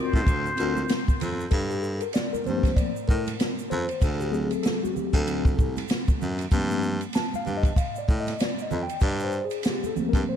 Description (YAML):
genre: hip hop, jazz-hop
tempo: 96 BPM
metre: 4/4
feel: swing 61% on 16ths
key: G minor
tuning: A4 = 440 Hz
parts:
  - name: trumpet with plunger mute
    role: melody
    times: 0.0-1.2 s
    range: C5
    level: -32 LUFS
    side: left 1 dB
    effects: ping-pong delay
  - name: mellow tine electric piano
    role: accompaniment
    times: 0.0-10.4 s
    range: F3 to A5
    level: -29 LUFS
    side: left 3 dB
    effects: medium stereo tremolo
  - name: bright baritone saxophone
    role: bass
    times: 0.1-10.2 s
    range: C2 to A2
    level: -29 LUFS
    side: equal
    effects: none
  - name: open jazz drum kit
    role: drums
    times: 0.1-10.3 s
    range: hi-hat, kick drum, ride cymbal, snare drum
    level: -26 LUFS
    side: equal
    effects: none
  - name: tube shaker and congas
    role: percussion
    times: 0.2-10.3 s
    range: none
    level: -38 LUFS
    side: right 10 dB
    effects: none
room: light reverb, small room ambience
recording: none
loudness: -23 LUFS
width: side -9 dB against mid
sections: 0.0-1.5 A section; 1.5-10.4 B section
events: tine electric piano solo 1.5-10.4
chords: 0.3 D7alt; 1.5 Gm11; 4.0 D7; 6.5 Gm11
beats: 0.27 0.89 | 1.52 2.14 2.77 3.39 | 4.02 4.64 5.27 5.89 | 6.52 7.14 7.77 8.39 | 9.02 9.64 10.27